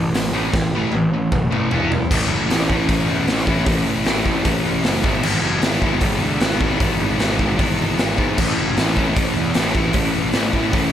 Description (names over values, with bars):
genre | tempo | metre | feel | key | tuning
punk rock | 153 BPM | 4/4 | straight | unclear | A4 = 439 Hz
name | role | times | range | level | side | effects
sludgy distorted guitar | riff | 0.0-10.9 s | G#2 to E4 | -20 LUFS | left 1 dB | overdrive
fuzz picked electric bass | bass | 0.0-10.9 s | E1 to G#2 | -23 LUFS | equal | overdrive
raw garage drum kit | drums | 0.1-10.8 s | crash cymbal, hi-hat, kick drum, snare drum, toms | -21 LUFS | equal | none
room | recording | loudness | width
light reverb | none | -16 LUFS | side -10 dB against mid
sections
0.0-2.1 A section; 2.1-10.9 B section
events
drum fill 0.5-2.1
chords
0.0 A5; 1.7 E5; 2.1 A; 5.0 E; 8.4 A